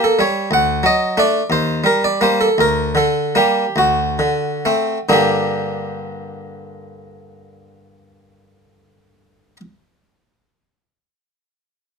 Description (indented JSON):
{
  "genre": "classical, baroque-style suite movement for harpsichord",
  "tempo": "42-61 BPM (dotted quarters)",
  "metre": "6/8",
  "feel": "rubato",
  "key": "G minor",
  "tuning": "A4 = 442 Hz",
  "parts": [
    { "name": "harpsichord", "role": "solo", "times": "0.0-9.6 s", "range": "D2 to F#5", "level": "-15 LUFS", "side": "equal", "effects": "none" }
  ],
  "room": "light reverb",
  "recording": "none",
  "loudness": "-14 LUFS",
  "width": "side -5 dB against mid",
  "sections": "0.0-5.1 A section; 5.1-10.2 B section",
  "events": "slowing down 0.0-5.1",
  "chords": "0.0 C#dim7(no3); 0.5 D; 1.5 Eb; 2.6 Gm/D; 3.7 D7; 5.1 Gm"
}